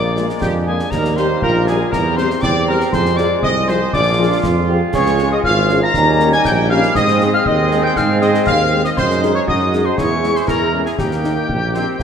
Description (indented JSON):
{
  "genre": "military-style march for wind band",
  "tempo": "119 BPM",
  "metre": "2/4",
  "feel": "straight",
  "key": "Ab major from 4.9 s",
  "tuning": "A4 = 438 Hz",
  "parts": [
    { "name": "dark trumpet section", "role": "melody", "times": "0.0-12.0 s", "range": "G4 to Bb5", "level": "-22 LUFS", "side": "equal", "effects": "none" },
    { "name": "clear euphonium", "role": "second line", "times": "0.0-12.0 s", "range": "Ab3 to Ab4", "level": "-23 LUFS", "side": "right 2 dB", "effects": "none" },
    { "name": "piccolo", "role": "second line", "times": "0.0-12.0 s", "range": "G5 to Bb6", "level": "-22 LUFS", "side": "left 3 dB", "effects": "none" },
    { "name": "warm woodwind section", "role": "second line", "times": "0.0-12.0 s", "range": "G4 to Bb5", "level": "-24 LUFS", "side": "left 1 dB", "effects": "none" },
    { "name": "warm trombone section", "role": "sustained chords", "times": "0.0-12.0 s", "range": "G3 to F4", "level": "-23 LUFS", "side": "right 2 dB", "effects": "none" },
    { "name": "warm tuba", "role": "bass", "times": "0.0-12.0 s", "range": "Ab1 to Ab2", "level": "-18 LUFS", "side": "right 2 dB", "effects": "none" },
    { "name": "mellow French horn section", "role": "accompaniment", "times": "0.2-11.8 s", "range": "F3 to Ab4", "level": "-23 LUFS", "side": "left 5 dB", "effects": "none" },
    { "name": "concert snare drum, concert bass drum and clash cymbals", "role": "drums", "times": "0.2-12.0 s", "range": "none", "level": "-26 LUFS", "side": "left 1 dB", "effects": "none" }
  ],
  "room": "wet concert hall reverb, RT60 2.1 s",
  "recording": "none",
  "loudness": "-13 LUFS",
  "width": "side -7 dB against mid",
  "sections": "0.0-12.0 A section",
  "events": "none",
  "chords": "0.0 Bb7; 0.9 Eb; 1.9 C/E; 2.9 Fm; 3.9 Bb7; 4.9 Db; 6.0 Eb7; 7.0 Ab; 9.0 Ab5/Gb; 10.0 Dbm/Fb; 11.0 Eb",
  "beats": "0.42 | 0.92 1.42 | 1.92 2.43 | 2.93 3.43 | 3.94 4.44 | 4.94 5.45 | 5.95 6.45 | 6.96 7.46 | 7.96 8.47 | 8.97 9.47 | 9.98 10.48 | 10.99 11.49 | 11.99"
}